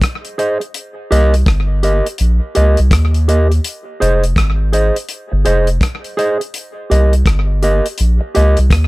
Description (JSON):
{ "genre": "roots reggae", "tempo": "83 BPM", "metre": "4/4", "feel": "swing 62% on 16ths", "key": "F minor", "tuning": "A4 = 440 Hz", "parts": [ { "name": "damped 70s drum kit", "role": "drums", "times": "0.0-8.9 s", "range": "hi-hat, kick drum, rim click", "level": "-17 LUFS", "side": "equal", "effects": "slapback echo" }, { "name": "mellow electric guitar", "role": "accompaniment", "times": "0.4-8.6 s", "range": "G4 to Eb5", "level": "-17 LUFS", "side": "right 1 dB", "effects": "dub echo" }, { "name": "soft dub sub bass", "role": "bass", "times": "1.1-8.9 s", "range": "F1 to Eb2", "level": "-12 LUFS", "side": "equal", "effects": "none" } ], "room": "little or no reverb", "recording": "none", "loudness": "-12 LUFS", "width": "side -22 dB against mid", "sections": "0.0-8.9 A section", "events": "none", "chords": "0.0 Fm7 (rootless); 0.7 Cm7; 3.6 Fm7; 6.5 Cm7" }